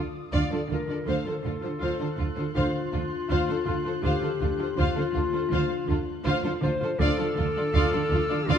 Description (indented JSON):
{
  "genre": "cinematic, suspense film score",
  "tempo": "81 BPM",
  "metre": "4/4",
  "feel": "straight",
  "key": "unclear",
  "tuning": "A4 = 443 Hz",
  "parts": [
    { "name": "warm symphonic violin section", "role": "melody", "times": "0.0-8.6 s", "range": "A4 to F5", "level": "-36 LUFS", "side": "left 5 dB", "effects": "none" },
    { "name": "mellow clarinet", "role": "second line", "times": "0.0-8.6 s", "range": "F4 to C5", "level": "-30 LUFS", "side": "left 4 dB", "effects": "none" },
    { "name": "warm symphonic violin section", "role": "second line", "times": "0.0-8.6 s", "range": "F4 to D5", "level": "-34 LUFS", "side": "left 1 dB", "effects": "none" },
    { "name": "warm symphonic viola section", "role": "accompaniment", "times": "0.0-8.6 s", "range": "F4", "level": "-35 LUFS", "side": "right 1 dB", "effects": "none" },
    { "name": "clear symphonic cello section", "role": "riff", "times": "0.0-8.6 s", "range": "D3 to D4", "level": "-33 LUFS", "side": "equal", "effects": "none" },
    { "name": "dark symphonic double bass section", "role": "bass", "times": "0.0-8.6 s", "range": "D2", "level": "-30 LUFS", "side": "right 3 dB", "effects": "none" },
    { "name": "warm symphonic cello section", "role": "bass", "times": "0.0-8.6 s", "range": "D3", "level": "-32 LUFS", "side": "right 3 dB", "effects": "none" },
    { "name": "warm symphonic violin section", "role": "texture", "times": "0.0-8.6 s", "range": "C6 to F#6", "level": "-40 LUFS", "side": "left 2 dB", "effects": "none" }
  ],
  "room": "moderate concert hall reverb, RT60 2.3 s",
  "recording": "dark, warm production",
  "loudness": "-24 LUFS",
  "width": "side -8 dB against mid",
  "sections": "0.0-8.6 A section",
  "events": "none",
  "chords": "0.0 Dm"
}